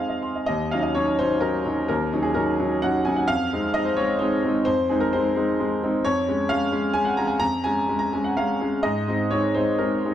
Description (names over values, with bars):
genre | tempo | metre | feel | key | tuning
neoclassical minimalist piano | 129 BPM | 3/4 | rubato | Eb dorian | A4 = 441 Hz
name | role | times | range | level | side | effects
clear grand piano | solo | 0.0-10.1 s | Eb2 to C6 | -20 LUFS | equal | none
room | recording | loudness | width
moderate recital hall reverb, RT60 1.6 s | dark, warm production | -20 LUFS | side -11 dB against mid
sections
0.5-10.1 A section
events
none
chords
0.5 Ebm7; 3.3 Fm7; 6.0 Db/F; 8.8 Ab